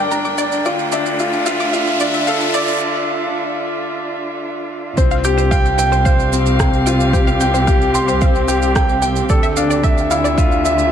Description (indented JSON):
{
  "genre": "piano and strings electronica",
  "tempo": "111 BPM",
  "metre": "4/4",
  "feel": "straight",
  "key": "unclear",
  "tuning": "A4 = 440 Hz",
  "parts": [
    { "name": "muted string quartet", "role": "sustained chords", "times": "0.0-10.9 s", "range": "C3 to G5", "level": "-22 LUFS", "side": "right 1 dB", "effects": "sidechain pumping" },
    { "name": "wide unison pluck", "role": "arpeggios", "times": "0.0-10.5 s", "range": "C5 to D6", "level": "-25 LUFS", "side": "left 1 dB", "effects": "sidechain pumping, digital delay" },
    { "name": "clear concert grand piano", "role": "riff", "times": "0.0-10.9 s", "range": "C4 to D6", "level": "-18 LUFS", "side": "left 2 dB", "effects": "digital delay" },
    { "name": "clear chamber double bass section", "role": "bass", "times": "0.0-10.9 s", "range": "G1 to D2", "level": "-21 LUFS", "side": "right 1 dB", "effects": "sidechain pumping" },
    { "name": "riser", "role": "sound effects", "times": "0.0-2.8 s", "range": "none", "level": "-24 LUFS", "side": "equal", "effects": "none" },
    { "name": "electronic shaker and rim click", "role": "drums", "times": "0.1-10.9 s", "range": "none", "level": "-26 LUFS", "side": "right 5 dB", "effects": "high-pass filter on perc, high-pass filter on snare, high-pass filter on room" },
    { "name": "electronic kick drum", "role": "drums", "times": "5.0-10.5 s", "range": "none", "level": "-16 LUFS", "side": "equal", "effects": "none" }
  ],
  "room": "light reverb, digital ambience",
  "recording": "high-pass filter",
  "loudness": "-14 LUFS",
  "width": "side -9 dB against mid",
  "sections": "0.0-5.0 A section; 5.0-10.9 B section",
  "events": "build-up 0.0-5.0; riser 0.0-2.8; break 2.8-5.0; drop 5.0-10.9",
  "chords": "0.0 Gm; 0.7 Dmadd9; 5.0 Csus4; 9.3 Dmadd9"
}